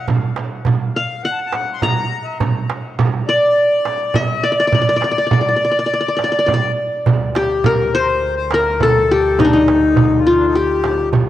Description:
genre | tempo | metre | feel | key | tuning
Arabic maqam ensemble | 103 BPM | 4/4 | straight | D maqam saba, D maqam kurd from 7.1 s | A4 = 440 Hz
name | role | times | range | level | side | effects
qanun | melody | 0.0-11.3 s | D4 to Bb5 | -15 LUFS | left 1 dB | cassette tape
accordion | second line | 0.0-11.1 s | D4 to C6 | -23 LUFS | left 7 dB | cassette tape, tape echo
darbuka | percussion | 0.1-11.3 s | none | -21 LUFS | right 4 dB | none
frame drum | percussion | 0.1-11.3 s | none | -22 LUFS | right 4 dB | none
rich double bass | drone | 7.1-11.3 s | D2 | -24 LUFS | equal | cassette tape
room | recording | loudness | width
light reverb | home recording on cassette | -14 LUFS | side -13 dB against mid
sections
0.0-7.1 A section; 7.1-11.3 B section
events
none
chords
none

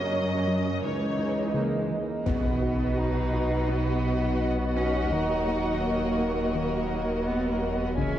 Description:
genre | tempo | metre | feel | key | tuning
cinematic, hybrid orchestral and electronic film score | 84 BPM | 4/4 | straight | unclear | A4 = 444 Hz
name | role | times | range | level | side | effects
warm symphonic violin section | melody | 0.0-1.6 s | C#5 to D#5 | -34 LUFS | left 2 dB | none
clear symphonic viola section | accompaniment | 0.0-8.2 s | E3 to B4 | -34 LUFS | right 2 dB | none
dark analog pad | sustained chords | 0.0-8.2 s | E3 to E5 | -30 LUFS | equal | chorus
rich symphonic cello section | bass | 0.0-8.2 s | C#2 to B2 | -31 LUFS | right 1 dB | none
soft round pluck | arpeggios | 0.1-8.2 s | C#3 to F#4 | -36 LUFS | equal | chorus
rich cello | melody | 1.5-8.2 s | G#3 to D#4 | -31 LUFS | right 1 dB | none
warm symphonic violin section | second line | 2.3-8.2 s | C#5 to G#5 | -36 LUFS | left 4 dB | none
punchy sub bass | bass | 2.3-8.2 s | D#1 to B1 | -32 LUFS | equal | none
taiko ensemble | drums | 2.3-3.7, 8.0-8.2 s | none | -35 LUFS | left 1 dB | none
impact | sound effects | 2.3-5.1 s | none | -36 LUFS | equal | none
room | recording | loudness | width
moderate scoring stage reverb, RT60 2.1 s | worn, warbling old tape, cassette tape, warbly pitch drift | -24 LUFS | side -11 dB against mid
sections
0.0-2.3 A section; 2.3-8.2 B section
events
impact 2.3-5.1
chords
0.0 F#; 0.8 C#madd9; 2.3 B; 5.1 D#m

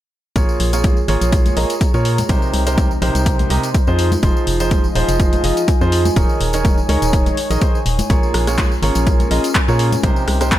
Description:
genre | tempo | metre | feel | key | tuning
piano house | 124 BPM | 4/4 | swing 55% on 16ths | Bb dorian | A4 = 440 Hz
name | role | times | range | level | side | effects
clear baby grand piano | riff | 0.4-10.6 s | C3 to Eb5 | -20 LUFS | right 2 dB | sidechain pumping, low-pass filter, analog delay
organ-like FM bass | bass | 0.4-10.6 s | Eb1 to Bb2 | -19 LUFS | equal | sidechain pumping
electronic kick drum | drums | 0.4-10.6 s | none | -16 LUFS | equal | overdrive
punchy analog drum machine | drums | 0.4-10.6 s | handclaps, hi-hat, rim click | -24 LUFS | left 2 dB | overdrive
tambourine and congas | percussion | 0.4-10.6 s | none | -28 LUFS | left 4 dB | none
warbly tape-like pad | texture | 0.9-10.6 s | Db4 to Bb5 | -25 LUFS | equal | chorus, built-in reverb, sidechain pumping
room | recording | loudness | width
light reverb | echo-heavy mix | -14 LUFS | side -13 dB against mid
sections
0.4-10.6 A section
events
none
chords
0.4 Bbm7; 2.3 Cm7; 4.0 Fm7; 6.2 Eb7sus4; 8.1 Bbm7; 10.0 Cm7

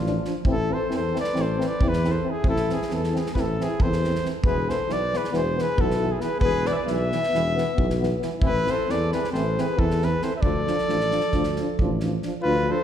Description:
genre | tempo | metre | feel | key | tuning
balkan folk, Balkan brass band | 270 BPM (eighths) | 9/8 | straight | D dorian sharp4 | A4 = 439 Hz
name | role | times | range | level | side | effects
warm flugelhorn | melody | 0.0-12.8 s | F4 to E5 | -27 LUFS | left 2 dB | none
dark flugelhorn | second line | 0.0-12.8 s | D4 to C5 | -31 LUFS | left 1 dB | slapback echo
mellow tuba | bass | 0.0-12.7 s | E1 to E2 | -27 LUFS | equal | none
clear euphonium | accompaniment | 0.1-12.8 s | E3 to F3 | -32 LUFS | right 6 dB | none
warm euphonium | accompaniment | 0.1-12.8 s | B3 to D4 | -31 LUFS | left 4 dB | none
loose indie drum kit | percussion | 0.1-12.3 s | kick drum, snare drum | -28 LUFS | equal | none
room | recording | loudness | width
moderate concert hall reverb, RT60 1.7 s | heard from further back in the room | -21 LUFS | side -9 dB against mid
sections
0.0-12.4 A section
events
none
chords
0.5 Am; 4.4 E5; 8.4 Am; 10.4 Dm

